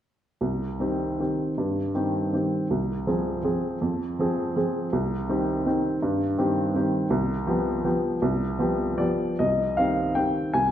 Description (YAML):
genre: classical, piano waltz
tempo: 144-174 BPM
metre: 3/4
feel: rubato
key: C minor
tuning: A4 = 440 Hz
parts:
  - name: clear upright piano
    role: solo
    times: 0.4-10.7 s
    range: C2 to Ab5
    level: -23 LUFS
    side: equal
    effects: none
room: wet recital hall reverb, RT60 1.6 s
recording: recorded in a church or concert hall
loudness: -23 LUFS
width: side -10 dB against mid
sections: 0.4-9.4 A section; 9.4-10.7 B section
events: none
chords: 0.4 Cm; 2.7 Fm/C; 4.9 Cm; 7.1 G7/C; 9.4 Cm